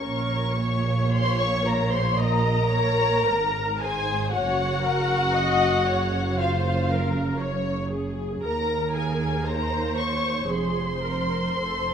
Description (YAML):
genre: classical, slow romantic movement for string orchestra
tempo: 49-59 BPM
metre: 4/4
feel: rubato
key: Bb minor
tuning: A4 = 440 Hz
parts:
  - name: muted studio violin section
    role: melody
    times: 0.0-11.9 s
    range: F5 to Db6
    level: -27 LUFS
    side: left 4 dB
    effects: none
  - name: muted studio violin section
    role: second line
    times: 0.0-11.9 s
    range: F4 to Db5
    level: -29 LUFS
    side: left 1 dB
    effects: none
  - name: muted studio viola section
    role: accompaniment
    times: 0.0-11.9 s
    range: Ab4 to Eb5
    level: -30 LUFS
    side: equal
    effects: none
  - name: muted studio cello section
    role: bass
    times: 0.0-11.9 s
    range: Eb2 to Bb2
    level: -30 LUFS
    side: right 3 dB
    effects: none
  - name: muted studio double bass section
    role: bass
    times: 0.0-11.9 s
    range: F1 to Eb2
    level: -28 LUFS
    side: right 2 dB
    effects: none
room: wet recital hall reverb, RT60 1.7 s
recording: none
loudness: -22 LUFS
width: side -8 dB against mid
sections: 0.0-11.9 A section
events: none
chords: 0.0 Bbm; 4.3 Gbmaj9#11; 8.4 Bbm11/Eb; 10.5 Bb5/F